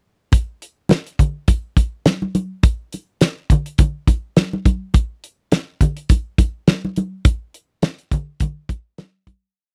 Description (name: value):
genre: funk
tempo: 104 BPM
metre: 4/4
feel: swing 56% on 16ths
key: none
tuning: none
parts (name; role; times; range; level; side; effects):
- damped 70s drum kit; drums; 0.3-9.4 s; hi-hat, kick drum, snare drum; -17 LUFS; equal; none
- congas; percussion; 0.3-9.4 s; none; -24 LUFS; equal; none
room: little or no reverb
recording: dry, close 1970s-style studio recording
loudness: -19 LUFS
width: mono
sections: 0.3-9.6 breakdown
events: fade-out 7.2-9.6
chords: none